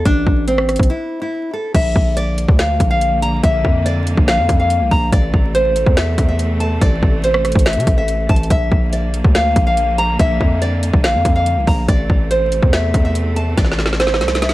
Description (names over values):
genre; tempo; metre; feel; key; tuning
hip hop, trap; 142 BPM; 4/4; half-time; unclear; A4 = 438 Hz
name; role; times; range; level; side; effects
nylon-string guitar; melody; 0.0-14.5 s; C4 to Bb5; -18 LUFS; equal; tape echo
distorted 808-style bass; bass; 0.0-14.5 s; A1 to C3; -18 LUFS; equal; distortion
trap drum kit; drums; 0.1-14.5 s; crash cymbal, hi-hat, kick drum, rim click, snare drum; -16 LUFS; equal; vintage 12-bit sampler grit
rich symphonic string section; sustained chords; 1.7-14.5 s; C3 to Bb3; -25 LUFS; right 1 dB; none
room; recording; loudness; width
little or no reverb; vinyl crackle; -13 LUFS; side -16 dB against mid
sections
0.0-1.7 A section; 1.7-14.5 B section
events
break 0.9-1.7; drum fill 13.6-14.5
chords
0.0 Am; 1.7 Bb; 5.1 Am; 8.5 Bb; 11.9 Am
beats
| 0.05 0.48 0.90 1.32 | 1.74 2.17 2.59 3.01 | 3.43 3.86 4.28 4.70 | 5.12 5.55 5.97 6.39 | 6.82 7.24 7.66 8.08 | 8.51 8.93 9.35 9.77 | 10.20 10.62 11.04 11.46 | 11.88 12.31 12.73 13.15 | 13.57 14.00 14.42